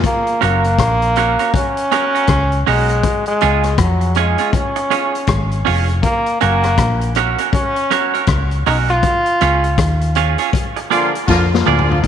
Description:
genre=roots reggae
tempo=80 BPM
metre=4/4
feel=swing 61% on 16ths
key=unclear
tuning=A4 = 438 Hz
part: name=hollow-body short-scale fingered electric bass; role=bass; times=0.0-12.1 s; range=F1 to F2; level=-17 LUFS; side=left 1 dB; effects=none
part: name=vintage drum kit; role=drums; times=0.0-12.1 s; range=hi-hat, kick drum, rim click, snare drum, toms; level=-20 LUFS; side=left 4 dB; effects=none
part: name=bright trombone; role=melody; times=0.1-10.4 s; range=Gb3 to F4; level=-18 LUFS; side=equal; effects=dub echo
part: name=semi-hollow electric guitar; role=accompaniment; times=0.4-11.9 s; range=Bb3 to D5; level=-19 LUFS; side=right 11 dB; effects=spring reverb
part: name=clear horn section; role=second line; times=10.9-12.1 s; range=Bb2 to F4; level=-19 LUFS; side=left 2 dB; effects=dub echo
room=light reverb, studio reverb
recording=1960s-style stereo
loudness=-13 LUFS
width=side -9 dB against mid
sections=0.0-12.0 A section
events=band accent 9.0-12.0; drum fill 11.3-12.0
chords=0.0 Gb; 3.0 Db; 6.0 Gb; 9.0 Db; 10.5 Bb7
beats=| 0.04 0.79 1.54 2.29 | 3.04 3.79 4.54 5.29 | 6.04 6.79 7.54 8.29 | 9.04 9.79 10.54 11.29 | 12.04

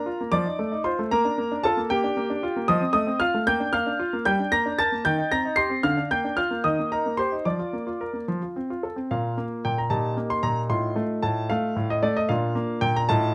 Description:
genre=classical-period piano sonatina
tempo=76 BPM (dotted quarters)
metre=6/8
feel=straight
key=Bb major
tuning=A4 = 440 Hz
part: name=clear grand piano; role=solo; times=0.0-13.3 s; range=A2 to C7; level=-25 LUFS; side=equal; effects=none
room=little or no reverb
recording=close, detailed microphones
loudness=-25 LUFS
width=mono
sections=0.0-9.1 A section; 9.1-13.3 B section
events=none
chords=0.3 F7; 1.1 Bb; 2.7 F7; 3.5 Bb; 4.3 Gm; 5.0 Cm/Eb; 5.8 Bb/D; 6.6 Eb; 7.5 Bb/F; 8.3 F; 9.1 Bb5; 9.9 Eb6/Bb; 10.7 F7/A; 12.3 Bb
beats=0.32 | 1.11 1.90 | 2.68 3.47 | 4.26 5.05 | 5.84 6.64 | 7.46 8.28 | 9.10 9.91 | 10.71 11.50 | 12.30 13.09

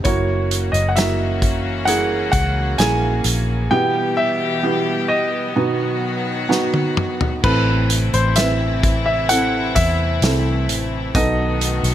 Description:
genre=pop ballad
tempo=65 BPM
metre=4/4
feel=straight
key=unclear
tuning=A4 = 440 Hz
part: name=clear baby grand piano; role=melody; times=0.0-11.9 s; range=B4 to G#5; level=-22 LUFS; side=left 1 dB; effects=none
part: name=felt-muted upright piano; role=accompaniment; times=0.0-11.9 s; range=A2 to B4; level=-22 LUFS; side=right 3 dB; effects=none
part: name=vintage muted fingered electric bass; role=bass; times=0.0-11.9 s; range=F#1 to E2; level=-21 LUFS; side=equal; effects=none
part: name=loose indie drum kit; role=drums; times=0.0-11.9 s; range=crash cymbal, hi-hat, kick drum, snare drum, toms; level=-21 LUFS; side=equal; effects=none
part: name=clear studio string section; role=sustained chords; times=0.1-11.9 s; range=B2 to G4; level=-26 LUFS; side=left 4 dB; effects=none
room=light reverb, small room ambience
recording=none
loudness=-16 LUFS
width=side -11 dB against mid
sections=0.0-7.4 A section; 7.4-11.9 B section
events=drum fill 6.5-7.4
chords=0.1 F#7; 3.7 Em/B; 5.6 B; 7.4 Am; 11.1 B7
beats=| 0.06 0.97 1.88 2.79 | 3.71 4.63 5.56 6.50 | 7.44 8.37 9.30 10.23 | 11.15

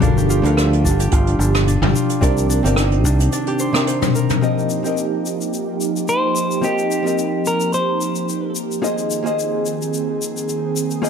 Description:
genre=sunset chillout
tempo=109 BPM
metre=4/4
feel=swing 54% on 16ths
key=F dorian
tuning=A4 = 440 Hz
part: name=hollow-body jazz guitar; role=accompaniment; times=0.0-11.1 s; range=C3 to F5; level=-24 LUFS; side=left 1 dB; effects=auto-pan, ping-pong delay
part: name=airy breathy pad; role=sustained chords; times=0.0-11.1 s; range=Eb3 to Ab4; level=-24 LUFS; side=right 4 dB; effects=chorus
part: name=concert harp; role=arpeggios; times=0.0-7.0 s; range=D4 to C5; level=-23 LUFS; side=right 1 dB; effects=ping-pong delay
part: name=fingered electric bass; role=bass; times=0.0-3.3 s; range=G1 to D2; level=-17 LUFS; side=equal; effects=none
part: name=electronic kick drum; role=drums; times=0.0-3.2 s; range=none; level=-20 LUFS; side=equal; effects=overdrive
part: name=jazz brush drum kit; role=drums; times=0.0-11.1 s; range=hi-hat, rim click, shaker, toms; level=-22 LUFS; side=left 5 dB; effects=none
part: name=clean electric guitar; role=melody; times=6.1-8.5 s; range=G4 to C5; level=-21 LUFS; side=equal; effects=vintage 12-bit sampler grit, tape echo
room=moderate plate reverb, RT60 2.1 s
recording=none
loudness=-16 LUFS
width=side -7 dB against mid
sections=0.0-4.4 A section; 4.4-11.1 B section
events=break 3.3-4.4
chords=0.0 Gm9; 2.2 Cm9; 4.4 F9sus4; 8.8 Bb9sus4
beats=| 0.02 0.57 1.12 1.67 | 2.22 2.77 3.33 3.88 | 4.43 4.98 5.53 6.08 | 6.63 7.18 7.73 8.28 | 8.83 9.38 9.93 10.48 | 11.03

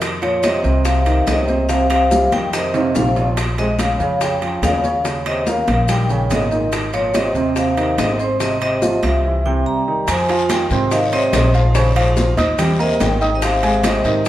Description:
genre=Afro-Cuban jazz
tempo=143 BPM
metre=4/4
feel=straight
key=unclear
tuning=A4 = 444 Hz
part: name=warm concert grand piano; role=accompaniment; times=0.0-14.3 s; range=C3 to Eb6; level=-21 LUFS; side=right 3 dB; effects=none
part: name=upright bass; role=bass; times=0.0-14.3 s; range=Ab1 to Ab2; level=-20 LUFS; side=equal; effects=none
part: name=bongos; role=percussion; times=0.0-14.3 s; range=none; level=-28 LUFS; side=left 3 dB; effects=none
part: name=congas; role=percussion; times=0.0-14.3 s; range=none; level=-26 LUFS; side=left 1 dB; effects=none
part: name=maracas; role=percussion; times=0.0-14.3 s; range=none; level=-34 LUFS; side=left 5 dB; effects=none
part: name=timbales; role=percussion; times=0.0-14.3 s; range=none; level=-25 LUFS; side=right 2 dB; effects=none
part: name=vibraphone with medium hard mallets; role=melody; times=0.2-14.2 s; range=C5 to Bb5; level=-21 LUFS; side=left 2 dB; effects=none
part: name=warm French horn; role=second line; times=0.2-14.3 s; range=Ab2 to G3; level=-24 LUFS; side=left 1 dB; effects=none
part: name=guiro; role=percussion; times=10.1-14.3 s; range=none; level=-32 LUFS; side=left 4 dB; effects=none
room=wet large studio reverb, RT60 1.2 s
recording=band playing live in one room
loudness=-14 LUFS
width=side -13 dB against mid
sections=0.0-10.1 A section; 10.1-14.3 B section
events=drum fill 2.7-3.4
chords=0.0 F5; 1.7 C5; 2.5 F5; 3.4 Bbm7; 5.1 Eb7; 6.7 Ab6; 9.2 C7; 10.1 Fm11; 11.8 Bbm9; 12.6 Eb; 13.4 Ab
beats=| 0.02 0.44 0.85 1.27 | 1.69 2.11 2.53 2.95 | 3.37 3.79 4.21 4.63 | 5.05 5.47 5.89 6.31 | 6.73 7.15 7.57 7.99 | 8.41 8.82 9.24 9.66 | 10.08 10.50 10.92 11.33 | 11.75 12.17 12.59 13.00 | 13.42 13.84 14.26

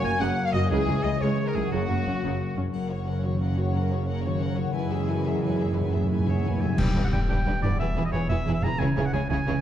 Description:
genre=cinematic, heroic adventure film score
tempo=119 BPM (dotted quarters)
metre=6/8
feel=straight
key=F# mixolydian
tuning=A4 = 440 Hz
part: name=clear studio violin section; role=melody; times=0.0-9.5 s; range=F#4 to G#5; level=-38 LUFS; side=left 6 dB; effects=none
part: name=bright oboe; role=second line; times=0.0-2.6, 6.3-9.6 s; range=F#4 to A#5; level=-32 LUFS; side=right 1 dB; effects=none
part: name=warm symphonic violin section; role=second line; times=0.0-9.5 s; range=F#4 to G#5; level=-36 LUFS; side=left 3 dB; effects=none
part: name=warm symphonic viola section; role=accompaniment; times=0.0-9.5 s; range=C#3 to G#4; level=-35 LUFS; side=right 1 dB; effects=none
part: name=mellow trombone section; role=sustained chords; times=0.0-6.6 s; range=C#3 to A#3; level=-32 LUFS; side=right 2 dB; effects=none
part: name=concert harp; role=arpeggios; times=0.0-9.6 s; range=E2 to C#5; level=-32 LUFS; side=left 6 dB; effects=none
part: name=rich symphonic cello section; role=bass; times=0.0-9.5 s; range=C#2 to C#3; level=-30 LUFS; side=right 2 dB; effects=none
part: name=rich symphonic double bass section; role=bass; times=0.0-9.5 s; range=E1 to C#2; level=-30 LUFS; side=right 3 dB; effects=none
part: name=timpani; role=percussion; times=0.0-0.2, 4.8-6.7 s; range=F#2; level=-33 LUFS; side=left 1 dB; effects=none
part: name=triangle, clash cymbals and concert bass drum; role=percussion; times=2.7-3.4, 6.8-7.4 s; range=none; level=-29 LUFS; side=left 1 dB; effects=none
room=moderate scoring stage reverb, RT60 1.8 s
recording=dark, warm production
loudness=-23 LUFS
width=side -10 dB against mid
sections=0.0-2.7 A section; 2.7-6.8 B section; 6.8-9.6 C section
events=timpani fill 4.7-6.8; band accent 6.8-7.1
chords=0.0 F#; 0.7 C#m; 1.7 F#; 4.7 E/F#; 6.8 G; 7.8 E; 8.8 C#m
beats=0.20 | 0.70 1.21 | 1.72 2.23 | 2.74 3.24 | 3.75 4.25 | 4.75 5.25 | 5.76 6.28 | 6.79 7.29 | 7.80 8.30 | 8.80 9.31

